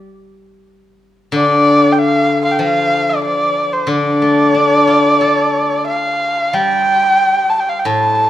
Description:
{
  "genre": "chinese traditional, Chinese chamber ensemble",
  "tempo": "93 BPM",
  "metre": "4/4",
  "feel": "rubato",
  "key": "D yu mode",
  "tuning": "A4 = 436 Hz",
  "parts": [
    { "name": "steel-string zither", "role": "accompaniment", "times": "0.0-8.3 s", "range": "A2 to A4", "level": "-16 LUFS", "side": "left 2 dB", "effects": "none" },
    { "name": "dark erhu", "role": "melody", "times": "1.4-8.3 s", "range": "C5 to A5", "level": "-13 LUFS", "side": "equal", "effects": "none" }
  ],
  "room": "light reverb",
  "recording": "minimal, uncompressed stereo recording",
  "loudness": "-11 LUFS",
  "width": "side -12 dB against mid",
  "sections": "0.0-6.6 A section; 6.6-8.3 B section",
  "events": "none",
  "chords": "none",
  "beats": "0.07 0.71 | 1.35 1.98 2.61 3.25 | 3.89 4.54 5.20 5.88 | 6.55 7.21 7.87"
}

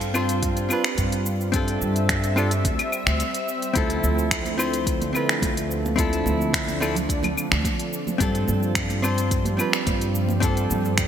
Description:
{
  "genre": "sunset chillout",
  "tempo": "108 BPM",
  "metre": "4/4",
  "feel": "straight",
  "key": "unclear",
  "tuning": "A4 = 436 Hz",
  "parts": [
    { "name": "hollow-body jazz guitar", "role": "accompaniment", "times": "0.0-11.1 s", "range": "C4 to C5", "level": "-26 LUFS", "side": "moving between left 4 dB and right 4 dB", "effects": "auto-pan, digital delay" },
    { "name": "lush unison pad", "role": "sustained chords", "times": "0.0-11.1 s", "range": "D3 to E5", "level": "-28 LUFS", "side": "right 1 dB", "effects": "chorus" },
    { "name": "upright bass", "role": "bass", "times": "0.0-11.1 s", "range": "D2 to G2", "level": "-26 LUFS", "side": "equal", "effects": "none" },
    { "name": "deep house drum kit", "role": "drums", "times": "0.0-11.1 s", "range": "claves, finger snaps, hi-hat, shaker", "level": "-26 LUFS", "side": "equal", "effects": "gated reverb" },
    { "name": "electronic kick drum", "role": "drums", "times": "0.4-11.1 s", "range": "none", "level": "-27 LUFS", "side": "equal", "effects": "none" },
    { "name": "congas", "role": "percussion", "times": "4.0-10.8 s", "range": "none", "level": "-34 LUFS", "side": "right 4 dB", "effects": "none" }
  ],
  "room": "moderate lush hall reverb, RT60 2.7 s",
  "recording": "bright 1980s-style digital production",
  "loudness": "-20 LUFS",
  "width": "side -9 dB against mid",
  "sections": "0.0-11.1 A section",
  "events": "break 3.2-3.8",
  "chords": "0.0 G7sus4; 3.8 Dm7; 8.2 G7sus4",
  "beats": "0.43 0.98 | 1.54 2.09 2.65 3.20 | 3.76 4.32 4.87 5.43 | 5.98 6.54 7.09 7.65 | 8.20 8.76 9.31 9.87 | 10.43 10.98"
}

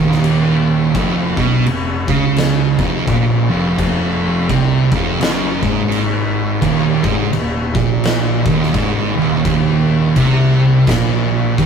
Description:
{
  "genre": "stoner and doom metal",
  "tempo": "85 BPM",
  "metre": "4/4",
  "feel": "swing 60% on 8ths",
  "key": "unclear",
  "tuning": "A4 = 441 Hz",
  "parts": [
    { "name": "thick fuzz guitar", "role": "riff", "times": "0.0-11.7 s", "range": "Eb2 to Db3", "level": "-21 LUFS", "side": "left 8 dB", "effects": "distortion" },
    { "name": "thick fuzz guitar", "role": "riff", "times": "0.0-11.7 s", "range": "Eb2 to Db3", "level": "-15 LUFS", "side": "right 5 dB", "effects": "distortion" },
    { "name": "fuzz picked electric bass", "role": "bass", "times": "0.0-11.7 s", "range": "Eb1 to Db2", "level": "-24 LUFS", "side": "left 2 dB", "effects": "overdrive" },
    { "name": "oversized low-tuned drum kit", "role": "drums", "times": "0.1-11.7 s", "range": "crash cymbal, kick drum, snare drum", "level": "-20 LUFS", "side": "left 2 dB", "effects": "none" }
  ],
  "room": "light reverb",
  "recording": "rough rehearsal-room recording, warm saturation",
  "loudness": "-13 LUFS",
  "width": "side -6 dB against mid",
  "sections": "0.0-11.7 A section",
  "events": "none",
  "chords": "0.0 N.C.; 1.0 F5; 6.6 Eb5",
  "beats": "0.24 | 0.95 1.66 2.37 3.08 | 3.79 4.50 5.20 5.91 | 6.62 7.33 8.03 8.74 | 9.45 10.15 10.86 11.57"
}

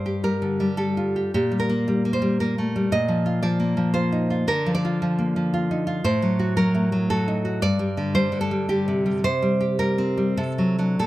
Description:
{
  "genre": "romantic piece for solo classical guitar",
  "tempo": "90-118 BPM",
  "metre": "3/4",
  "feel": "rubato",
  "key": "G minor",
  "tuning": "A4 = 440 Hz",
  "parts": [
    { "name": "nylon-string guitar", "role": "solo", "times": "0.0-11.1 s", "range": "G2 to Eb5", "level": "-20 LUFS", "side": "equal", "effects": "none" }
  ],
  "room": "light reverb",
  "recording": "close, detailed microphones",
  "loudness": "-20 LUFS",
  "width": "side -16 dB against mid",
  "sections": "0.0-11.1 A section",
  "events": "none",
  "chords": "0.0 G5; 1.3 Gm/Bb; 2.9 Bb; 4.5 Bb/D; 6.0 Adim7; 7.6 G5; 9.2 C5; 10.4 D7/C",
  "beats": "0.24 0.78 | 1.33 1.86 2.39 | 2.91 3.42 3.94 | 4.47 5.00 5.52 | 6.04 6.57 7.10 | 7.62 8.15 8.69 | 9.24 9.79 10.38 | 11.01"
}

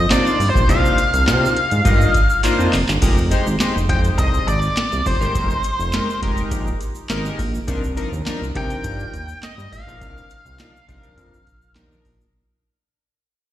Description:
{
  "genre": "early-eighties boogie funk",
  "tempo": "103 BPM",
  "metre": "4/4",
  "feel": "straight",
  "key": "F dorian",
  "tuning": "A4 = 441 Hz",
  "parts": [
    { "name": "octave-fuzz lead guitar", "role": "melody", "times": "0.0-11.7 s", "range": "C5 to G5", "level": "-22 LUFS", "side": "left 1 dB", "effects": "distortion, slapback echo" },
    { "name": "fat analog bass", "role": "bass", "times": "0.0-12.3 s", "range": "F1 to C3", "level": "-21 LUFS", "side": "equal", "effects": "none" },
    { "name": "chorused polysynth", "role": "accompaniment", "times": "0.1-12.1 s", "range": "F3 to Eb5", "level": "-24 LUFS", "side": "left 2 dB", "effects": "slapback echo" },
    { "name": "booming analog drum machine", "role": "drums", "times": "0.1-12.2 s", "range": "crash cymbal, handclaps, hi-hat, kick drum, snare drum", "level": "-21 LUFS", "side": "equal", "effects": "none" },
    { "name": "egg shaker", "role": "percussion", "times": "0.1-12.3 s", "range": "none", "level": "-39 LUFS", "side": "right 5 dB", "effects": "none" }
  ],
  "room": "light reverb, digital ambience",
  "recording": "live gig heard through the venue's PA, recital hall reverb, faint mains hum",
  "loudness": "-16 LUFS",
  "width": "side -12 dB against mid",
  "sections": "0.0-3.0 A section; 3.0-12.3 B section",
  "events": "drum fill 2.4-3.0; fade-out 3.0-12.3",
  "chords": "0.0 Cm11; 3.0 Fm11; 7.7 Cm11",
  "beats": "0.11 | 0.69 1.27 1.85 2.44 | 3.02 3.60 4.18 4.77 | 5.35 5.93 6.51 7.10 | 7.68 8.26 8.85 9.43 | 10.01 10.59 11.18 11.76"
}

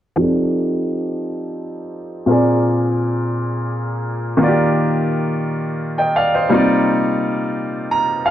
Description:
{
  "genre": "R&B",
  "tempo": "57 BPM (dotted quarters)",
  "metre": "6/8",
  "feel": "straight",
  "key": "unclear",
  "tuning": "A4 = 440 Hz",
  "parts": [
    { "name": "clear baby grand piano", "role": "accompaniment", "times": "0.2-8.3 s", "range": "Bb2 to Bb5", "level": "-16 LUFS", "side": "equal", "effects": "low-pass filter" }
  ],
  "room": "light reverb",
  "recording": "dark, warm production",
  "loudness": "-16 LUFS",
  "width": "side -11 dB against mid",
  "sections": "0.2-8.3 A section",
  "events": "filter sweep on grand piano 0.2-8.3; grand piano fill 7.5-8.3",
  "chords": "0.2 F13; 2.3 Bb9; 4.4 Ebmaj9; 6.5 Cm11",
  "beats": "| 0.18 1.23 | 2.29 3.34 | 4.39 5.44 | 6.50 7.55"
}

